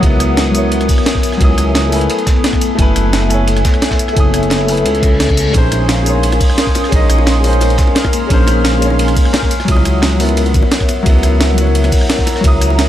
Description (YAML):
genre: liquid drum and bass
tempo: 174 BPM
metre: 4/4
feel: straight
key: unclear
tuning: A4 = 440 Hz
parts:
  - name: warm grand piano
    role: accompaniment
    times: 0.0-12.9 s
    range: Gb3 to Eb6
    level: -18 LUFS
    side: left 1 dB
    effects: digital delay
  - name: glassy FM pad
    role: sustained chords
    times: 0.0-12.9 s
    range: Cb4 to F6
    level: -21 LUFS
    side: equal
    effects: ensemble chorus, built-in reverb
  - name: vibraphone with soft mallets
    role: arpeggios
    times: 0.0-12.9 s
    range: A3 to F5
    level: -21 LUFS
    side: left 6 dB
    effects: dub echo
  - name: smooth synth bass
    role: bass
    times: 0.0-12.9 s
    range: Gb1 to Db2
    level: -14 LUFS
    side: equal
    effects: none
  - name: breakbeat sampler-style drum kit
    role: drums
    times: 0.0-12.9 s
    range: hi-hat, ride cymbal, rim click, snare drum, tambourine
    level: -19 LUFS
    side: right 1 dB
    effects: none
  - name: crunchy breakbeat drum kit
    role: drums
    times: 0.0-12.9 s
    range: hi-hat, ride cymbal, snare drum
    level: -26 LUFS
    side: right 1 dB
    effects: high-pass filter on cymbals, high-pass filter on hats, high-pass filter on snare, high-pass filter on room
  - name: electronic kick drum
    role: drums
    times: 0.0-12.5 s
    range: none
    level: -14 LUFS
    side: equal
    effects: none
  - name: reverse cymbal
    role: sound effects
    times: 5.0-5.5 s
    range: none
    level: -26 LUFS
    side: left 2 dB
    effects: none
  - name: bongos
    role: percussion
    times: 5.7-12.8 s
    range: none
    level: -28 LUFS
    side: left 3 dB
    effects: none
room: light reverb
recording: dark, warm production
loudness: -10 LUFS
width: side -12 dB against mid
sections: 0.0-12.9 A section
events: reverse cymbal 5.0-5.5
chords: 0.0 Dbm11; 2.1 Gbm11; 5.5 Bbm11; 9.5 Dbm11